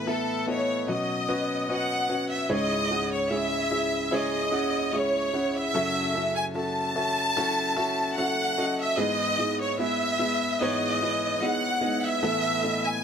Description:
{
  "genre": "pop ballad",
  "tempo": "74 BPM",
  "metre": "4/4",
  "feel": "straight",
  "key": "unclear",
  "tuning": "A4 = 441 Hz",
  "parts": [
    { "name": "clear studio violin section", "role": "melody", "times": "0.0-13.0 s", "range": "A4 to A5", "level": "-26 LUFS", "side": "equal", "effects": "none" },
    { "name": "clear grand piano", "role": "accompaniment", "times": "0.0-13.0 s", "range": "C#2 to F#5", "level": "-28 LUFS", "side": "left 1 dB", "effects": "none" },
    { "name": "nylon-string guitar", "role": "arpeggios", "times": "2.5-13.0 s", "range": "G#2 to A4", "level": "-34 LUFS", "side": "right 6 dB", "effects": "ping-pong delay" }
  ],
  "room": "light reverb",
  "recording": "none",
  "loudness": "-24 LUFS",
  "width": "side -7 dB against mid",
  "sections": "0.0-2.5 A section; 2.5-13.0 B section",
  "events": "none",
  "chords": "0.0 Asus2; 0.9 Badd9; 2.5 C#m; 5.7 F#m7; 9.0 Emaj7/G#; 12.2 Asus2"
}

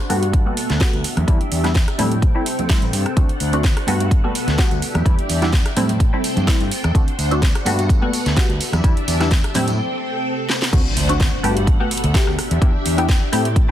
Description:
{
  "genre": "filtered disco house",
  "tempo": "127 BPM",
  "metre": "4/4",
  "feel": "swing 53% on 16ths",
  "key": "G major",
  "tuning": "A4 = 438 Hz",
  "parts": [
    { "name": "string machine, full ensemble", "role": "sustained chords", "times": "0.0-13.7 s", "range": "B3 to G5", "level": "-26 LUFS", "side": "equal", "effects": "ensemble chorus, vintage 12-bit sampler grit, sidechain pumping, low-pass filter" },
    { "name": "funky polysynth comp", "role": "accompaniment", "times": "0.1-13.7 s", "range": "G3 to G4", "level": "-23 LUFS", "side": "left 1 dB", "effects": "chorus, phaser, cassette tape, sidechain pumping, low-pass filter" },
    { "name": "growling fingered electric bass", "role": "bass", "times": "0.1-13.7 s", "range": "A1 to A2", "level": "-21 LUFS", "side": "equal", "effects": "overdrive, sidechain pumping, low-pass filter" },
    { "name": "house drum kit", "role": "drums", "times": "0.1-13.7 s", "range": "crash cymbal, hi-hat, rim click, snare drum", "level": "-24 LUFS", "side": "right 1 dB", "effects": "sidechain pumping on hats, sidechain pumping on cymbals" },
    { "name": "congas and tambourine", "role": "percussion", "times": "0.1-9.8 s", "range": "none", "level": "-29 LUFS", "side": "right 2 dB", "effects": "sidechain pumping on perc, low-pass filter on perc" },
    { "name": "electronic kick drum", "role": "drums", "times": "0.3-13.7 s", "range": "none", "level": "-16 LUFS", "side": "equal", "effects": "none" },
    { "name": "impact", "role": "sound effects", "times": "10.7-12.6 s", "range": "none", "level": "-27 LUFS", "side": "equal", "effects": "none" }
  ],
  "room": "little or no reverb",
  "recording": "dense, heavily limited modern master",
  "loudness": "-16 LUFS",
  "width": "side -11 dB against mid",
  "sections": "0.0-10.7 A section; 10.7-13.7 B section",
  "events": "filter sweep 0.0-10.7; break 9.8-10.7; drum fill 10.5; drop 10.7-13.7; impact 10.7-12.6",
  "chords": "0.1 Gmaj9; 1.0 Em7; 2.0 Am7; 3.2 D7; 3.9 Gmaj9; 4.8 Em7; 5.8 Am7; 6.9 D7; 7.7 Gmaj9; 8.6 Em7; 9.5 Am7; 10.7 D7; 11.4 Gmaj9; 12.4 Em7"
}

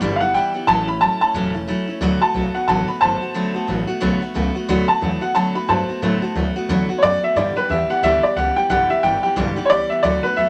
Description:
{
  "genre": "rockabilly",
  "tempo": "180 BPM",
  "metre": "4/4",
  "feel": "swing 60% on 8ths",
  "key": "D major",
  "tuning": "A4 = 440 Hz",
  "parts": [
    { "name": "picked steel-string acoustic guitar", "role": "accompaniment", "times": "0.0-10.5 s", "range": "G2 to G4", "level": "-24 LUFS", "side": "equal", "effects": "none" },
    { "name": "upright bass", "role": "bass", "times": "0.0-10.5 s", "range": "E1 to A2", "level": "-28 LUFS", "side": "equal", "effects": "none" },
    { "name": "clear upright piano", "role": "melody", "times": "0.2-10.5 s", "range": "B4 to B5", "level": "-20 LUFS", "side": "equal", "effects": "none" }
  ],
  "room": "moderate studio reverb, RT60 0.6 s",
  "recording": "none",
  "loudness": "-19 LUFS",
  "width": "mono",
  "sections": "0.0-2.0 A section; 2.0-10.5 B section",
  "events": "upright piano solo 0.0-2.0",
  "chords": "0.0 G6; 0.7 A6; 2.0 D6; 7.4 G6"
}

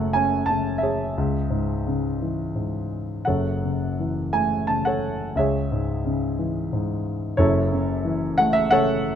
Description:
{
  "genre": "classical, lyrical solo piano",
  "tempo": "87 BPM",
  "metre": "3/4",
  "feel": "uneven beats, rubato",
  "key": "unclear",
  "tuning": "A4 = 438 Hz",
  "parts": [
    { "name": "dark grand piano", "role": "solo", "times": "0.0-9.2 s", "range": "F#1 to A5", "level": "-21 LUFS", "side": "equal", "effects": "none" }
  ],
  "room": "moderate small room ambience, RT60 0.5 s",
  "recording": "dark, warm production",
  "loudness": "-21 LUFS",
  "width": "side -9 dB against mid",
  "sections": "0.0-9.2 A section",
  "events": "none",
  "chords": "0.0 F#m; 1.2 C#m; 3.2 F#m7; 5.4 C#m; 7.4 F#m7"
}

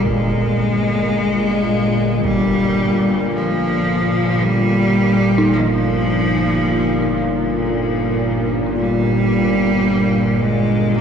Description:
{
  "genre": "dark ambient drone",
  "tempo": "free time",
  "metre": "none",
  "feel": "none",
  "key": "unclear",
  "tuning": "A4 = 439 Hz",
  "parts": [
    { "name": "rich cello", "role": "melody", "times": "0.0-11.0 s", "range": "Eb3 to Bb3", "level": "-18 LUFS", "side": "left 1 dB", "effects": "ping-pong delay" },
    { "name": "dark detuned synth bell", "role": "arpeggios", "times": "0.0-11.0 s", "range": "Eb4", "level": "-25 LUFS", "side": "equal", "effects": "chorus, ping-pong delay" },
    { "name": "bowed-like drone", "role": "drone", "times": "0.0-11.0 s", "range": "G1 to Bb2", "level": "-18 LUFS", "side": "equal", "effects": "built-in reverb" },
    { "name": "impact", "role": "percussion", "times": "0.0-2.4 s", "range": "none", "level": "-30 LUFS", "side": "left 1 dB", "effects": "low-pass filter on sfx" }
  ],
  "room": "wet lush hall reverb, RT60 2.5 s",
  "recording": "dreamy mix soaked in reverb, cassette tape, nothing above 10.3 kHz",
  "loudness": "-15 LUFS",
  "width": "side -7 dB against mid",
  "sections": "0.0-11.0 A section",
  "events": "fade-in on impacts and reversed cymbals 0.0-11.0",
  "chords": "0.0 Bbsus2"
}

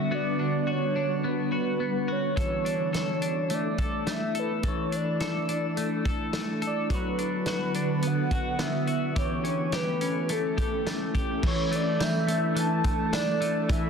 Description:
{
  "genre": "dream pop",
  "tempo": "106 BPM",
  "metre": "4/4",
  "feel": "straight",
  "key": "D major",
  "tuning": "A4 = 439 Hz",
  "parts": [
    { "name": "warm velvety synth lead", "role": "melody", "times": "0.0-13.9 s", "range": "A4 to A5", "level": "-31 LUFS", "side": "right 1 dB", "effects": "chorus, ping-pong delay" },
    { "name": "ethereal airy pad", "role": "sustained chords", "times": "0.0-13.9 s", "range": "D3 to B4", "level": "-31 LUFS", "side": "equal", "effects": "ensemble chorus, built-in reverb" },
    { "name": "semi-hollow electric guitar", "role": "arpeggios", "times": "0.0-13.9 s", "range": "E3 to A4", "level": "-30 LUFS", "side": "left 1 dB", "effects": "analog chorus, ping-pong delay" },
    { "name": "loose indie drum kit", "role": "drums", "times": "2.4-13.8 s", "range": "crash cymbal, hi-hat, kick drum, snare drum, tambourine", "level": "-31 LUFS", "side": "equal", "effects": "none" },
    { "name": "glockenspiel with rubber mallets", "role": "texture", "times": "12.0-13.9 s", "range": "G6", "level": "-40 LUFS", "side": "right 3 dB", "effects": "ping-pong delay" }
  ],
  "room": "moderate plate reverb, RT60 1.8 s, studio ambience",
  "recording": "dense, heavily limited modern master",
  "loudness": "-25 LUFS",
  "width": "side -6 dB against mid",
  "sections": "0.0-11.4 A section; 11.4-13.9 B section",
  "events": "none",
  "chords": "0.0 Gmaj7/D; 2.4 Dsus2; 6.9 D69; 9.2 A7; 11.4 Dsus2"
}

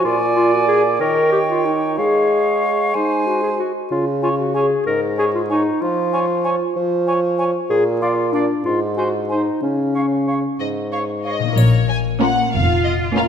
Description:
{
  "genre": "cinematic, playful, whimsical film cue",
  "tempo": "63 BPM (dotted quarters)",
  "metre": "6/8",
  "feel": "straight",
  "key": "Db major",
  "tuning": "A4 = 440 Hz",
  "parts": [
    { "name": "bright silver concert flute", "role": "second line", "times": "0.0-11.3 s", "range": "F5 to Ab5", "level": "-27 LUFS", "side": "left 2 dB", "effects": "none" },
    { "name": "warm clarinet", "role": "second line", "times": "0.0-10.6 s", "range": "Db4 to Bb4", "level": "-19 LUFS", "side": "left 2 dB", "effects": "none" },
    { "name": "mellow bassoon", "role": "accompaniment", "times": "0.0-11.4 s", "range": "Ab2 to Ab3", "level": "-21 LUFS", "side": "right 2 dB", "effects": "none" },
    { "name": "mellow cor anglais", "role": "second line", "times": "0.1-11.4 s", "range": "C5 to D5", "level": "-24 LUFS", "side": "right 2 dB", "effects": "none" },
    { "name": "warm studio violin section", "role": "melody", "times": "10.6-13.2 s", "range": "Db5 to Ab5", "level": "-23 LUFS", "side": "left 4 dB", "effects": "none" },
    { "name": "concert harp", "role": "arpeggios", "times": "11.4-13.3 s", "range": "Bb2 to Bb4", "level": "-22 LUFS", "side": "left 12 dB", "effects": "none" },
    { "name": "warm studio double bass section", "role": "bass", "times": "11.6-13.3 s", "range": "F1 to Bb1", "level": "-18 LUFS", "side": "equal", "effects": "none" },
    { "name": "triangle", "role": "percussion", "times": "11.6-12.8 s", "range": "none", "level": "-36 LUFS", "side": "left 6 dB", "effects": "none" },
    { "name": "rich studio violin section", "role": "second line", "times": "12.2-13.3 s", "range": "F4 to Bb4", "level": "-25 LUFS", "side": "left 1 dB", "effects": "none" },
    { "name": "warm studio viola section", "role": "accompaniment", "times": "12.2-13.3 s", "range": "Bb3 to Db4", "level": "-21 LUFS", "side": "right 1 dB", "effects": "none" },
    { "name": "rich studio cello section", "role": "bass", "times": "12.5-13.3 s", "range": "F4", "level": "-22 LUFS", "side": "right 2 dB", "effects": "none" }
  ],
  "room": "wet scoring stage reverb, RT60 1.9 s",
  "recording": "none",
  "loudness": "-16 LUFS",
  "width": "side -8 dB against mid",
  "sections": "0.0-11.6 A section; 11.6-13.3 B section",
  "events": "none",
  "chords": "0.1 Bb7; 1.0 Eb7; 2.0 Db/Ab; 3.9 Db5; 5.8 Db/F; 7.7 Bb; 8.6 Ab; 9.6 Db5; 11.6 Bbm"
}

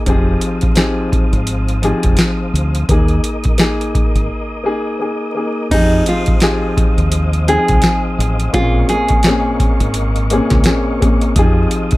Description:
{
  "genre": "hip hop, boom-bap hip-hop",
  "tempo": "85 BPM",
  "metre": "4/4",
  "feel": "swing 58% on 16ths",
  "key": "F minor",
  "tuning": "A4 = 440 Hz",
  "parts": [
    { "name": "dark upright piano", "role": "accompaniment", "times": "0.0-12.0 s", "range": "Bb2 to G5", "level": "-18 LUFS", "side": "left 2 dB", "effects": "high-pass filter, low-pass filter" },
    { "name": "percussive tonewheel organ", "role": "sustained chords", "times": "0.0-12.0 s", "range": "Bb4 to Eb6", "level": "-27 LUFS", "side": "equal", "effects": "chorus vibrato, fast rotary speaker, high-pass filter, low-pass filter" },
    { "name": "deep dub fingered electric bass", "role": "bass", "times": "0.1-11.7 s", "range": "F1 to F2", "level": "-17 LUFS", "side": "equal", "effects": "none" },
    { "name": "booming analog drum machine", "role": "drums", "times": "0.1-12.0 s", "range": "crash cymbal, hi-hat, kick drum, snare drum", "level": "-15 LUFS", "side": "equal", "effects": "none" },
    { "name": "nylon-string guitar", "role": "melody", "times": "5.7-10.1 s", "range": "Eb4 to Ab4", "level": "-18 LUFS", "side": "right 1 dB", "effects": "high-pass filter, low-pass filter, tape echo" }
  ],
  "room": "light reverb",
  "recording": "vinyl crackle",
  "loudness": "-12 LUFS",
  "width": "side -18 dB against mid",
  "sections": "0.0-5.7 A section; 5.7-12.0 B section",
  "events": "break 4.3-5.7",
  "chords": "0.1 Fm7; 2.9 Ebsus4; 5.7 Fm7; 8.5 Bbm7; 11.4 Fm7"
}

